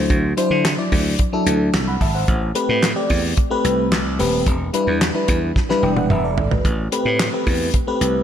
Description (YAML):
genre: early-eighties boogie funk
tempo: 110 BPM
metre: 4/4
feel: straight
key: A dorian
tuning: A4 = 439 Hz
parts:
  - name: FM electric piano with soft pad layer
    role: accompaniment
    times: 0.0-8.2 s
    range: F#3 to B5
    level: -20 LUFS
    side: left 1 dB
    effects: chorus
  - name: slap bass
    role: bass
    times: 0.0-8.2 s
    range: D#1 to D3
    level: -21 LUFS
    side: right 1 dB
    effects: none
  - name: damped 70s drum kit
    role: drums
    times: 0.1-8.1 s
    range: handclaps, hi-hat, kick drum, snare drum, toms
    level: -20 LUFS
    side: equal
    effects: none
room: moderate scoring stage reverb, RT60 1.9 s, studio reverb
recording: big arena sound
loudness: -16 LUFS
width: side -9 dB against mid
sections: 0.0-8.2 A section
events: drum fill 5.6-6.6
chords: 0.0 D9; 2.3 Am9; 4.5 Em7; 6.6 Am9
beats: | 0.10 0.65 1.19 1.74 | 2.28 2.83 3.38 3.92 | 4.47 5.01 5.56 6.10 | 6.65 7.19 7.74